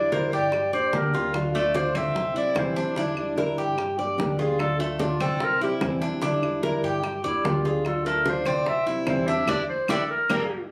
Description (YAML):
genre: latin, Cuban son and guajira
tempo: 147 BPM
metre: 4/4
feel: straight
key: unclear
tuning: A4 = 441 Hz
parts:
  - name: warm clarinet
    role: melody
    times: 0.0-10.7 s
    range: D4 to E5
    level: -28 LUFS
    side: equal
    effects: none
  - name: nylon-string guitar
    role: accompaniment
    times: 0.0-10.4 s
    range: C3 to G4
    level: -30 LUFS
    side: equal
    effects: none
  - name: Cuban tres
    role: arpeggios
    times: 0.0-10.4 s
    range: A3 to D5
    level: -31 LUFS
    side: equal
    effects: none
  - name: upright bass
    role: bass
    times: 0.0-10.4 s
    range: G1 to G2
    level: -38 LUFS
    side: equal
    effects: none
  - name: bongos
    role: percussion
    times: 0.1-10.4 s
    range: none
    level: -36 LUFS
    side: equal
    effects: none
  - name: congas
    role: percussion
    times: 0.1-10.4 s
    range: none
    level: -40 LUFS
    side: equal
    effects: none
  - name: claves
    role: percussion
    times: 0.5-10.4 s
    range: none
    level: -40 LUFS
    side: equal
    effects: none
room: moderate large studio reverb, RT60 1.0 s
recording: recorded on a phone in the room, club reverb, compression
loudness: -25 LUFS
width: mono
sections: 0.0-10.7 A section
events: clarinet solo 0.0-10.7; band accent 9.5-10.7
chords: 0.0 Em7b5; 0.5 Gm; 1.3 Dm; 2.2 C; 3.0 Em7b5; 3.8 Gm; 4.6 Dm; 5.4 C; 6.2 Em7b5; 7.0 Gm; 7.8 Dm; 8.7 C; 9.5 Em7b5